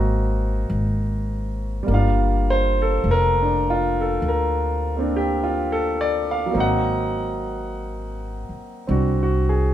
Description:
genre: jazz ballad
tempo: 51 BPM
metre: 4/4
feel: swing 66% on 8ths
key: unclear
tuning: A4 = 442 Hz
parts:
  - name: clear grand piano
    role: accompaniment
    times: 0.0-9.7 s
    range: Gb3 to Gb5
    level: -22 LUFS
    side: equal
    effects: none
  - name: upright bass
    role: bass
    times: 0.0-9.7 s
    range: F1 to D2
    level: -23 LUFS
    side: equal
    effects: none
room: moderate large studio reverb, RT60 1.1 s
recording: band playing live in one room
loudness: -19 LUFS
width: side -11 dB against mid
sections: 0.0-9.7 A section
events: none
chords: 0.0 Ab9; 1.9 Gm7; 6.5 Ab9

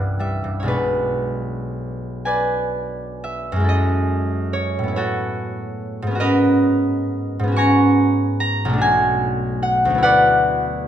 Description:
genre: classical, solo harp piece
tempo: 36-51 BPM (dotted quarters)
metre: 6/8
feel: rubato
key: B dorian, F# dorian from 3.7 s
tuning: A4 = 440 Hz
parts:
  - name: concert harp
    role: solo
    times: 0.0-10.9 s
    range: B1 to C#6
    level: -17 LUFS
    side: equal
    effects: none
room: moderate recital hall reverb, RT60 1.8 s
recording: none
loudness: -17 LUFS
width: side -10 dB against mid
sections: 0.0-3.7 A section; 3.7-10.9 B section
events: none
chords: 0.0 Cmaj7; 0.7 Bm6; 3.7 F#m9; 5.0 A69; 6.2 G#m11; 8.8 Bm9; 10.0 D69

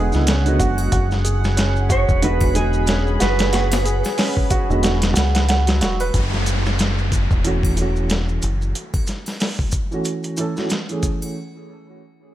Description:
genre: trip hop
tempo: 92 BPM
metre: 4/4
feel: swing 58% on 16ths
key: F# minor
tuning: A4 = 440 Hz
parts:
  - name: clean lap steel guitar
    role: melody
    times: 0.0-5.5 s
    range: G#4 to C#5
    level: -25 LUFS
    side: right 4 dB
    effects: dub echo
  - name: dark upright piano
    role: accompaniment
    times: 0.0-11.4 s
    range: D3 to A4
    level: -25 LUFS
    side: right 2 dB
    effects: tremolo, low-pass filter, tape echo
  - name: deep dark ambient pad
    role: sustained chords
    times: 0.0-6.1 s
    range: G#4 to B5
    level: -29 LUFS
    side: equal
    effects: chorus, built-in reverb
  - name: felt-muted upright piano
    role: arpeggios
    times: 0.0-6.2 s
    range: F#3 to F#5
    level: -26 LUFS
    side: right 3 dB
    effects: dub echo
  - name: deep dub fingered electric bass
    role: bass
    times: 0.0-8.7 s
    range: E1 to C#2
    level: -20 LUFS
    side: equal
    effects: none
  - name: dusty soul sampler-style drum kit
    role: drums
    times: 0.1-11.2 s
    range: hi-hat, kick drum, snare drum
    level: -21 LUFS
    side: equal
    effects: overdrive
  - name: maracas and triangle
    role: percussion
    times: 0.1-11.3 s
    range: none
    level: -34 LUFS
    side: left 1 dB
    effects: none
  - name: downlifter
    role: sound effects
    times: 6.1-11.4 s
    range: none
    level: -29 LUFS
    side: equal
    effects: none
room: digital ambience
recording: none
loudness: -17 LUFS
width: side -13 dB against mid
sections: 0.0-6.1 A section; 6.1-11.4 B section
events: none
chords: 0.0 E7; 6.1 F#m7

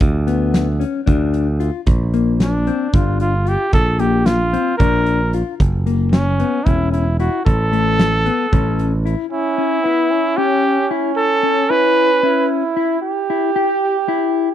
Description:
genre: progressive instrumental, band music in an uneven meter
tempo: 226 BPM (eighths)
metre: 7/8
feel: straight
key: A mixolydian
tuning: A4 = 440 Hz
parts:
  - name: modern bright picked electric bass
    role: bass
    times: 0.0-9.1 s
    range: E1 to D2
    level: -18 LUFS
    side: right 1 dB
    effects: none
  - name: big rock drum kit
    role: drums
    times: 0.0-9.2 s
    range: hi-hat, kick drum, snare drum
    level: -18 LUFS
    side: right 1 dB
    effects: none
  - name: mellow electric guitar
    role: arpeggios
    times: 0.3-14.5 s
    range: A3 to G4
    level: -21 LUFS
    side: left 10 dB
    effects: spring reverb
  - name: warm trumpet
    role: melody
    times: 2.4-12.5 s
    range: C#4 to B4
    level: -18 LUFS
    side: right 2 dB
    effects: none
  - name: mellow flugelhorn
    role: second line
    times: 9.3-14.5 s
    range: B3 to G4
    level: -20 LUFS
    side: right 10 dB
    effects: none
room: studio reverb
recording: dry, close 1970s-style studio recording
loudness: -14 LUFS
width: side -11 dB against mid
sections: 0.0-9.3 A section; 9.3-14.5 B section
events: none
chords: 0.0 N.C.; 1.9 Bb; 5.6 F#; 7.5 A; 9.3 Aadd9 (rootless); 13.0 Em

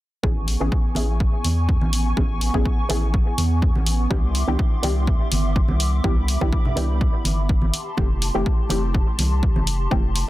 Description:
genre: deep house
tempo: 124 BPM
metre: 4/4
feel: swing 54% on 16ths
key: unclear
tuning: A4 = 442 Hz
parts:
  - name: hollow soft pad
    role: sustained chords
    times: 0.2-10.3 s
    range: B3 to D6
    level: -30 LUFS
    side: right 1 dB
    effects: ensemble chorus, vintage 12-bit sampler grit, sidechain pumping
  - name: filtered dub chord stab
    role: stabs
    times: 0.2-10.3 s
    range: A3 to G#4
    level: -28 LUFS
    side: left 1 dB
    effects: chorus, analog delay
  - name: round analog bass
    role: bass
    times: 0.2-10.2 s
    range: F1 to E2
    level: -22 LUFS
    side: equal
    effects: sidechain pumping
  - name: electronic kick drum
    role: drums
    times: 0.2-10.0 s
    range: none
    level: -20 LUFS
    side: equal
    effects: none
  - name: congas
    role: percussion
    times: 0.2-10.0 s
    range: none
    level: -30 LUFS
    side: right 1 dB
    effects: none
  - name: electronic hi-hat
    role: drums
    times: 0.5-10.3 s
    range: none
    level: -27 LUFS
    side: equal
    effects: none
room: little or no reverb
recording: dense, heavily limited modern master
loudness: -18 LUFS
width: side -16 dB against mid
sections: 0.2-10.3 A section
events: none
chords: 0.2 Amaj9; 4.1 Cmaj9; 7.7 Fmaj9

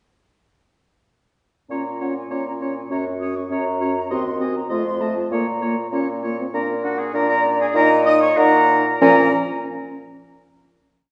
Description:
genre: quick classical-period movement for wind quintet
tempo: 99 BPM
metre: 2/4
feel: straight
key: Bb minor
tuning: A4 = 437 Hz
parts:
  - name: concert flute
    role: melody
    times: 1.7-9.4 s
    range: Gb5 to Eb6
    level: -26 LUFS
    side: equal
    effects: none
  - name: warm oboe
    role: second line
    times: 1.7-9.3 s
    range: Gb4 to Eb5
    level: -27 LUFS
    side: equal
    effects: none
  - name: dark clarinet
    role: accompaniment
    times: 1.7-9.3 s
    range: Db4 to Gb5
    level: -26 LUFS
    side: equal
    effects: none
  - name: warm French horn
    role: accompaniment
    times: 1.7-9.3 s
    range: F3 to Eb4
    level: -28 LUFS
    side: equal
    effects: none
  - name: warm bassoon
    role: bass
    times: 1.7-9.3 s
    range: Eb2 to Bb2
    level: -25 LUFS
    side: equal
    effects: none
room: wet recital hall reverb, RT60 1.7 s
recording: heard from further back in the room, nothing above 10.3 kHz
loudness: -19 LUFS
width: mono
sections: 1.7-6.5 A section; 6.5-9.0 coda; 9.0-10.3 final chord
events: slowing down 5.9-9.0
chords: 1.7 Bbm; 2.9 Gb; 4.1 Cdim/Eb; 4.7 F7; 5.3 Bbm; 6.5 Bb; 7.7 Eb5/Bb; 9.0 Bbm

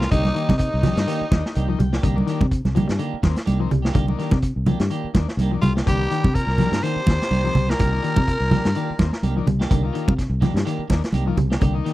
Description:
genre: afrobeat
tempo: 125 BPM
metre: 4/4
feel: swing 55% on 16ths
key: C minor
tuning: A4 = 439 Hz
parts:
  - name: raspy tenor saxophone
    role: melody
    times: 0.0-1.7, 5.6-9.5 s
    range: Eb4 to C5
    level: -26 LUFS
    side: equal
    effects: none
  - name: growling trumpet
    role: second line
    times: 0.0-1.8, 5.6-9.5 s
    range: Eb4 to C5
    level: -34 LUFS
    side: right 4 dB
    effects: none
  - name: raspy baritone saxophone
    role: second line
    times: 0.0-1.7, 5.6-9.5 s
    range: Eb2 to C3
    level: -34 LUFS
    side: left 5 dB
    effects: none
  - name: clean electric guitar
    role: arpeggios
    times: 0.0-11.9 s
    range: D3 to G3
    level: -28 LUFS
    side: left 6 dB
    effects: spring reverb
  - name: clean electric guitar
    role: stabs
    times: 0.0-11.9 s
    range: Eb3 to G4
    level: -32 LUFS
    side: right 6 dB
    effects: wide subtle chorus
  - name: fingered electric bass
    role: bass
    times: 0.0-11.8 s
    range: C2 to C3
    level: -22 LUFS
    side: equal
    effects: none
  - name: vintage drum kit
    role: drums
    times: 0.0-11.9 s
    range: hi-hat, kick drum, snare drum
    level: -23 LUFS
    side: equal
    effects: none
  - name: combo organ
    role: accompaniment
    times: 0.1-11.9 s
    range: Eb3 to G5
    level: -31 LUFS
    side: left 9 dB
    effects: none
  - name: congas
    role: percussion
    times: 0.2-11.7 s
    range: none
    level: -23 LUFS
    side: right 2 dB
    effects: none
room: little or no reverb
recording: dry, close 1970s-style studio recording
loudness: -18 LUFS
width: side -16 dB against mid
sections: 0.0-11.9 A section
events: transistor combo organ fill 1.1-2.0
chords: 0.0 Cm9

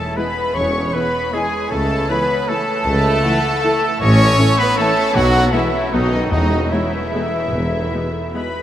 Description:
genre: classical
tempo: 141-169 BPM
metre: 3/4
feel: rubato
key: E major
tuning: A4 = 440 Hz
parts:
  - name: warm studio violin section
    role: melody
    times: 0.0-8.6 s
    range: D#5 to C#6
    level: -26 LUFS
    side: left 2 dB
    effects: none
  - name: dark clarinet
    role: second line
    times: 0.0-8.6 s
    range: G#4 to F#5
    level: -27 LUFS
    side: right 1 dB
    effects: none
  - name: dark studio violin section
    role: second line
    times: 0.0-8.5 s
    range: D#4 to C#5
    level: -25 LUFS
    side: left 2 dB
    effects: none
  - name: silver concert flute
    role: second line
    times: 0.0-8.4 s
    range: D#5 to C#6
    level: -28 LUFS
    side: left 2 dB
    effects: none
  - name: warm oboe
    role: second line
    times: 0.0-8.6 s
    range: D#4 to C#5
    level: -28 LUFS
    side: left 2 dB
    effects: none
  - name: warm French horn section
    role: sustained chords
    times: 0.0-8.5 s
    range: D#3 to C#4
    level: -24 LUFS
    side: equal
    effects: none
  - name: clear trumpet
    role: stabs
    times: 0.0-8.5 s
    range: D#4 to C#5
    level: -23 LUFS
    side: right 3 dB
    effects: none
  - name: warm studio viola section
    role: accompaniment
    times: 0.2-8.4 s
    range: F#3 to E4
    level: -28 LUFS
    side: left 2 dB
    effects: none
  - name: mellow trombone section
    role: sustained chords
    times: 0.2-8.5 s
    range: B2 to A3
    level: -29 LUFS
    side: equal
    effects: none
  - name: dark studio cello section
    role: bass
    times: 0.6-7.9 s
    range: C#2 to B2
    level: -24 LUFS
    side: equal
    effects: none
  - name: dark studio double bass section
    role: bass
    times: 0.6-7.9 s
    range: E1 to C#2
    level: -23 LUFS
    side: equal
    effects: none
  - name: warm tuba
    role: bass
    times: 0.6-7.9 s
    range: E1 to C#2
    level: -22 LUFS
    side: equal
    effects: none
  - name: timpani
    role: percussion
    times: 5.2-6.9 s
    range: E2 to B2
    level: -28 LUFS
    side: left 1 dB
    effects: none
room: wet huge ambient reverb, RT60 8.0 s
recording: in a vast, echoing space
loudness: -15 LUFS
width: side -11 dB against mid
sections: 0.0-8.6 A section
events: none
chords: 0.0 E; 1.7 A/C#; 4.0 A; 5.2 E/B; 5.9 B; 6.3 E

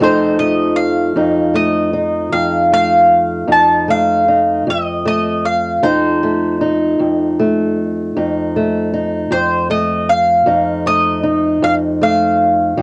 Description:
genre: acoustic country blues, solo or duo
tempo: 52 BPM (dotted quarters)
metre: 12/8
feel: straight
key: F mixolydian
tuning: A4 = 435 Hz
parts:
  - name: mandolin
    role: melody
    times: 0.0-12.8 s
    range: C5 to A5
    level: -17 LUFS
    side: equal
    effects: cassette tape
  - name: fingerpicked old ladder-braced acoustic guitar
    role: accompaniment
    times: 0.0-12.8 s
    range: F2 to A4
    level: -18 LUFS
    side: equal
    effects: cassette tape
room: moderate booth ambience, RT60 0.2 s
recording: home recording on cassette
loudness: -15 LUFS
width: mono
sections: 0.0-12.8 A section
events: none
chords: 0.0 F7

